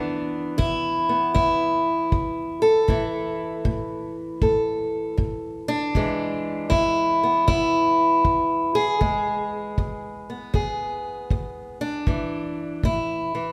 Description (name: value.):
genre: acoustic country blues, solo or duo.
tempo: 78 BPM.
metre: 4/4.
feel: swing 66% on 8ths.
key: E major.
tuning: A4 = 441 Hz.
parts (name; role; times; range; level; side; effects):
fingerpicked steel-string acoustic guitar; melody; 0.0-13.5 s; E2 to A4; -24 LUFS; equal; none.
kick drum; drums; 0.6-13.1 s; none; -26 LUFS; equal; none.
room: moderate concert hall reverb, RT60 2.1 s.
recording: recorded in a church or concert hall.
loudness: -23 LUFS.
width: mono.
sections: 0.0-13.5 A section.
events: none.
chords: 0.0 E5; 2.9 A5; 6.0 E; 12.1 A5.